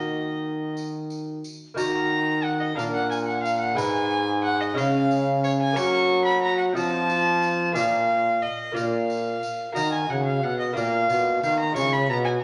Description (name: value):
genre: classical, renaissance-style consort dance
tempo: 60 BPM (dotted quarters)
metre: 6/8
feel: straight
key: Eb minor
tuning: A4 = 436 Hz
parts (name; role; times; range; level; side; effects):
- rich violin; melody; 0.0-12.4 s; Db5 to Db6; -27 LUFS; equal; none
- lute; accompaniment; 0.0-12.4 s; Ab2 to Eb5; -31 LUFS; equal; none
- warm trombone; bass; 0.0-12.4 s; Ab2 to Gb3; -28 LUFS; equal; none
- tambourine; percussion; 0.8-12.1 s; none; -45 LUFS; equal; none
room: wet stone room reverb, RT60 1.2 s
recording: nothing above 10.7 kHz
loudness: -24 LUFS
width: mono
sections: 0.0-1.8 A section; 1.8-12.4 B section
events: none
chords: 0.0 Ebm; 2.8 Bb; 3.8 Abm; 4.8 Db; 5.8 Gb; 6.8 F7; 7.8 Bbsus4; 8.8 Bb; 9.8 Ebm; 10.8 Bb; 11.8 Db